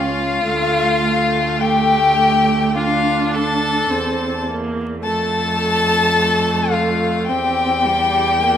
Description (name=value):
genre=classical, slow romantic movement for string quartet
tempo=53 BPM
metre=4/4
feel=rubato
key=D minor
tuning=A4 = 440 Hz
part: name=muted violin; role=melody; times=0.0-8.6 s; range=F5 to A5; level=-19 LUFS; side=left 5 dB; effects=none
part: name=muted violin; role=second line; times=0.0-8.6 s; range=F4 to A4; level=-20 LUFS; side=left 2 dB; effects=none
part: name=muted viola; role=accompaniment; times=0.0-8.6 s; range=G3 to D4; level=-22 LUFS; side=right 2 dB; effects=none
part: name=muted cello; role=bass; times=0.0-8.6 s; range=C#2 to F2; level=-23 LUFS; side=right 4 dB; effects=none
room=wet recital hall reverb, RT60 1.3 s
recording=minimal, uncompressed stereo recording, vinyl crackle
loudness=-15 LUFS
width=side -9 dB against mid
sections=0.0-8.6 A section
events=none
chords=0.4 Dm; 5.0 F; 7.3 C7/E